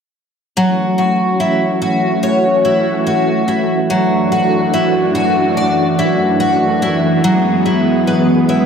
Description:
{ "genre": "dream pop", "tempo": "72 BPM", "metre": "4/4", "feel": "straight", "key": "F# minor", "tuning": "A4 = 440 Hz", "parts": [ { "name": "string machine, violas", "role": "sustained chords", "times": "0.6-8.7 s", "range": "F#2 to G#4", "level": "-16 LUFS", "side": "right 1 dB", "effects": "ensemble chorus" }, { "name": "picked twelve-string acoustic guitar", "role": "arpeggios", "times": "0.6-8.7 s", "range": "F#3 to D5", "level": "-14 LUFS", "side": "left 1 dB", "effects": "analog chorus, analog delay" } ], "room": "wet echo chamber reverb, RT60 2.5 s", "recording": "echo-heavy mix", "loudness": "-12 LUFS", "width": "side -6 dB against mid", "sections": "0.6-8.7 A section", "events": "none", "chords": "0.6 F#m7; 3.9 Dadd9/F#; 7.2 E/F#", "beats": "| 0.57 1.40 2.23 3.07 | 3.90 4.73 5.57 6.40 | 7.23 8.07" }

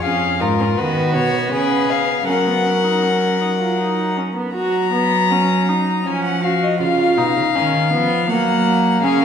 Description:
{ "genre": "classical, baroque-style fugue for string quartet", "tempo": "80 BPM", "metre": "3/4", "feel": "straight", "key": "F# major", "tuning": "A4 = 440 Hz", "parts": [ { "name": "rich violin", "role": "melody", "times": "0.0-9.2 s", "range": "A#4 to A#5", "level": "-20 LUFS", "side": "left 7 dB", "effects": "none" }, { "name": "warm violin", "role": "second line", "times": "0.0-4.1, 9.0-9.2 s", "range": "E#4 to A#4", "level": "-22 LUFS", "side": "left 3 dB", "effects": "none" }, { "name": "warm viola", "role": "accompaniment", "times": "0.0-9.2 s", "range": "A#3 to F#4", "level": "-20 LUFS", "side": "right 1 dB", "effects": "none" }, { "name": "rich cello", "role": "bass", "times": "0.0-9.2 s", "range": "E#2 to F#3", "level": "-20 LUFS", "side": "right 3 dB", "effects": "none" } ], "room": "wet recital hall reverb, RT60 1.8 s", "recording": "heard from further back in the room", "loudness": "-15 LUFS", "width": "side -8 dB against mid", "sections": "0.0-4.6 A section; 4.6-9.2 B section", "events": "none", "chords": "0.0 C#/E#; 0.8 B/D#; 1.5 C#7; 2.3 F#; 6.1 C#/E#; 6.8 C#7; 8.3 F#", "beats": "| 0.03 0.78 1.53 | 2.29 3.04 3.79 | 4.55 5.31 6.06 | 6.81 7.55 8.29 | 9.04" }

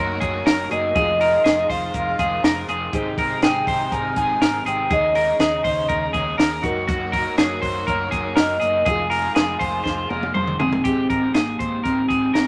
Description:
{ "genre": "jangly indie pop", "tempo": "121 BPM", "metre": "4/4", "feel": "straight", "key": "Ab major", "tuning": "A4 = 440 Hz", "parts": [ { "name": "hollow clarinet-like synth lead", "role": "melody", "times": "0.0-12.5 s", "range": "Bb3 to Ab5", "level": "-24 LUFS", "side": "equal", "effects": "chorus" }, { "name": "dark upright piano", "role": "accompaniment", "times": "0.0-12.5 s", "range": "C4 to C6", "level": "-36 LUFS", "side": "equal", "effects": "none" }, { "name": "raw garage guitar", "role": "accompaniment", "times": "0.0-12.5 s", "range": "Eb3 to Db5", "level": "-35 LUFS", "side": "equal", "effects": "overdrive, harmonic tremolo" }, { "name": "rich studio string section", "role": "sustained chords", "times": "0.0-10.8 s", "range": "C3 to Gb4", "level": "-35 LUFS", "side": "equal", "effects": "none" }, { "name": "clean electric guitar", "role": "arpeggios", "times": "0.0-12.5 s", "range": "Gb4 to C5", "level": "-26 LUFS", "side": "equal", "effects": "spring reverb" }, { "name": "hollow-body short-scale fingered electric bass", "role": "bass", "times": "0.0-12.5 s", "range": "F1 to Eb2", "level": "-35 LUFS", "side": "equal", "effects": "none" }, { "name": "compact cocktail drum kit", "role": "drums", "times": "0.2-12.5 s", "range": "hi-hat, kick drum, snare drum, toms", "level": "-25 LUFS", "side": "equal", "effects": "none" } ], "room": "moderate club reverb, RT60 0.6 s", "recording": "none", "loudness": "-21 LUFS", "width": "mono", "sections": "0.0-10.9 A section; 10.9-12.5 B section", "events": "drum fill 9.9-10.9; upright piano fill 10.1-10.9", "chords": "0.0 Gb6; 1.0 Fm7; 2.9 Abmaj7; 4.9 Eb7sus4; 6.6 Gb6; 8.9 Fm7; 10.9 Abmaj7", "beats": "0.46 | 0.95 1.45 1.94 2.44 | 2.93 3.43 3.92 4.42 | 4.91 5.40 5.90 6.39 | 6.89 7.38 7.88 8.37 | 8.87 9.37 9.86 10.36 | 10.86 11.35 11.85 12.35" }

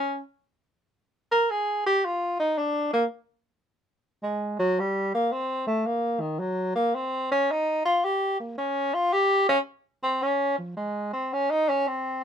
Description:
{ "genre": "jazz", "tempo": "110 BPM", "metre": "4/4", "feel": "swing 68% on 8ths", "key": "unclear", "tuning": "A4 = 440 Hz", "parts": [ { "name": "warm tenor saxophone", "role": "solo", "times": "0.0-12.2 s", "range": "Eb3 to Bb4", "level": "-23 LUFS", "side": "equal", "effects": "none" } ], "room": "light reverb", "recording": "close, detailed microphones", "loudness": "-24 LUFS", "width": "side -8 dB against mid", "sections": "0.0-3.7 A section; 3.7-12.2 B section", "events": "tenor saxophone solo 3.7-12.2", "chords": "none", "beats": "0.39 0.94 | 1.48 2.02 2.57 3.11 | 3.66 4.20 4.75 5.29 | 5.83 6.38 6.92 7.47 | 8.01 8.56 9.10 9.65 | 10.19 10.74 11.28 11.83" }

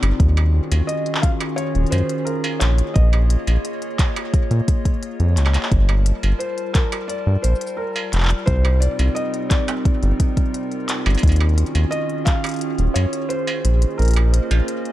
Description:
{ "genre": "IDM", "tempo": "87 BPM", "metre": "4/4", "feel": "straight", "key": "unclear", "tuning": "A4 = 435 Hz", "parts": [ { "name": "warbly tape-like pad", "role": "sustained chords", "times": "0.0-14.9 s", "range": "C3 to A5", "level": "-26 LUFS", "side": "right 1 dB", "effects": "chorus, built-in reverb" }, { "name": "round analog bass", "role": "bass", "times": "0.0-14.6 s", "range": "Eb1 to Bb2", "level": "-16 LUFS", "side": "equal", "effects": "none" }, { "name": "industrial drum kit", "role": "drums", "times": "0.0-14.9 s", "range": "handclaps, hi-hat, shaker, struck metal", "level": "-27 LUFS", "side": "right 1 dB", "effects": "none" }, { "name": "electronic kick drum", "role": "drums", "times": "0.2-12.4 s", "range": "none", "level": "-17 LUFS", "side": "equal", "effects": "none" }, { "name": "felt-muted upright piano", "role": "melody", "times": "0.9-14.9 s", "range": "Bb4 to F5", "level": "-28 LUFS", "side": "left 1 dB", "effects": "tape echo" } ], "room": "little or no reverb", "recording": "dark, warm production", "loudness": "-17 LUFS", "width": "side -14 dB against mid", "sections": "0.0-14.9 A section", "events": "kick drops out 14.0-14.9", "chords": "0.2 Ebm11; 2.6 Bbm7; 5.7 Gm9; 8.5 Cm11; 11.2 Ebm11; 13.6 Bbm11", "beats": "| 0.20 0.89 1.58 2.27 | 2.96 3.65 4.34 5.03 | 5.72 6.41 7.09 7.79 | 8.47 9.16 9.85 10.54 | 11.23 11.92 12.61 13.30 | 13.99 14.68" }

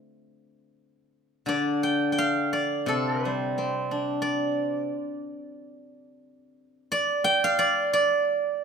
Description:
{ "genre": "chinese traditional, Chinese solo plucked strings", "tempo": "77-93 BPM", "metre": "4/4", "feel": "rubato", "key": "D yu mode", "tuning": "A4 = 436 Hz", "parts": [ { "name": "steel-string zither", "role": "solo", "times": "0.0-8.6 s", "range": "C3 to G5", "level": "-23 LUFS", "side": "right 1 dB", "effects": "none" } ], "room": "moderate recital hall reverb, RT60 1.8 s", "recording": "minimal, uncompressed stereo recording", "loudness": "-23 LUFS", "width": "side -6 dB against mid", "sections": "0.0-1.5 A section; 1.5-8.6 B section", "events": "none", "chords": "none", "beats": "0.73 | 1.47 2.17 2.88 3.56 | 4.22 4.88 5.55 6.22 | 6.89 7.58 8.26" }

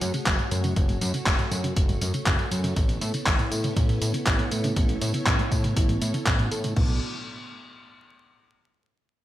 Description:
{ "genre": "italo disco", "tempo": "120 BPM", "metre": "4/4", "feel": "straight", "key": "unclear", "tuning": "A4 = 439 Hz", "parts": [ { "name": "string machine, full ensemble", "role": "sustained chords", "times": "0.0-7.0 s", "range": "A3 to D5", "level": "-33 LUFS", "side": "right 1 dB", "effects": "ensemble chorus" }, { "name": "soft round pluck", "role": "arpeggios", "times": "0.0-7.0 s", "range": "G#2 to C#3", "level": "-32 LUFS", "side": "right 1 dB", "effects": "chorus, digital delay" }, { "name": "fat analog bass", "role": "bass", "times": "0.0-7.0 s", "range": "F#1 to A2", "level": "-28 LUFS", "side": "equal", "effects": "none" }, { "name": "clean 12-bit digital drum machine", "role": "drums", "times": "0.0-6.9 s", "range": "crash cymbal, handclaps, hi-hat, tambourine", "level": "-29 LUFS", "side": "equal", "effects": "gated reverb" }, { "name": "electronic kick drum", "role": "drums", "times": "0.3-6.9 s", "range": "none", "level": "-24 LUFS", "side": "equal", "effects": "none" } ], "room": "light reverb", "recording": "bright 1980s-style digital production, vinyl crackle", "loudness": "-22 LUFS", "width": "side -14 dB against mid", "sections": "0.0-6.8 A section; 6.8-8.8 B section", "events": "none", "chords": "0.0 F#madd9; 2.8 Aadd9; 6.8 Bm7", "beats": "0.27 | 0.77 1.26 1.76 2.27 | 2.77 3.27 3.77 4.26 | 4.76 5.26 5.76 6.26 | 6.76" }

